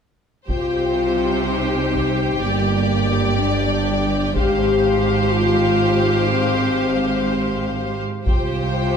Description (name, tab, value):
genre	cinematic, epic orchestral film score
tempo	62 BPM (dotted quarters)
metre	6/8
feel	straight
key	unclear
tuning	A4 = 440 Hz
part	clear symphonic violin section	melody	0.5-9.0 s	F5 to G5	-28 LUFS	left 5 dB	none
part	clear symphonic violin section	second line	0.5-9.0 s	C5 to D5	-26 LUFS	left 4 dB	none
part	clear studio viola section	accompaniment	0.5-9.0 s	G4	-26 LUFS	right 1 dB	none
part	dark French horn section	sustained chords	0.5-9.0 s	Bb3 to G4	-21 LUFS	left 4 dB	none
part	rich symphonic cello section	bass	0.5-9.0 s	G2 to C3	-24 LUFS	right 4 dB	none
part	rich symphonic double bass section	bass	0.5-9.0 s	G1 to C2	-24 LUFS	right 4 dB	none
part	taiko ensemble	drums	0.5-9.0 s	none	-23 LUFS	equal	none
room	moderate scoring stage reverb, RT60 1.6 s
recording	none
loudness	-17 LUFS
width	side -7 dB against mid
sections	0.5-9.0 A section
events	none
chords	0.5 Cm; 2.4 Gm; 4.4 Fmadd9/Ab; 8.3 C5